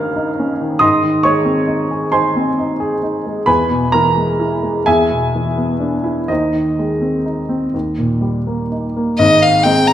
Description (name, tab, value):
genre	classical, romantic duo for violin and grand piano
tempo	40-47 BPM (dotted quarters)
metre	6/8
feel	rubato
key	Ab major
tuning	A4 = 441 Hz
part	warm baby grand piano	accompaniment	0.0-9.9 s	Ab1 to G6	-14 LUFS	equal	none
part	rich violin	melody	9.2-9.9 s	Eb5 to Bb5	-11 LUFS	left 2 dB	none
room	wet recital hall reverb, RT60 1.4 s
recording	none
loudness	-14 LUFS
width	side -11 dB against mid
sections	0.0-9.2 A section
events	none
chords	0.0 Eb7/G; 0.8 Ab; 3.5 E; 4.9 E7; 6.3 Ab/Eb; 7.7 Eb; 9.2 Ab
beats	| 0.82 2.14 | 3.48 4.87 | 6.29 7.74 | 9.19